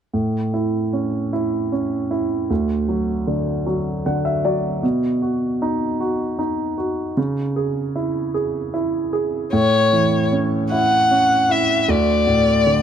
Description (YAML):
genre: pop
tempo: 51 BPM (dotted quarters)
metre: 6/8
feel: straight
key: unclear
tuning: A4 = 442 Hz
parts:
  - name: warm grand piano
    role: accompaniment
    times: 0.1-12.8 s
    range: D2 to F#5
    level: -19 LUFS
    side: right 2 dB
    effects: none
  - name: dark violin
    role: melody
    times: 9.5-12.8 s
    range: C#5 to F#5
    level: -16 LUFS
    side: left 2 dB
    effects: none
room: light reverb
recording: none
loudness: -18 LUFS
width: side -8 dB against mid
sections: 0.1-9.5 A section; 9.5-12.8 B section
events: grand piano fill 3.7-4.8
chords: 0.1 A; 2.5 D; 4.8 B; 7.2 C#m; 9.5 A; 11.9 D5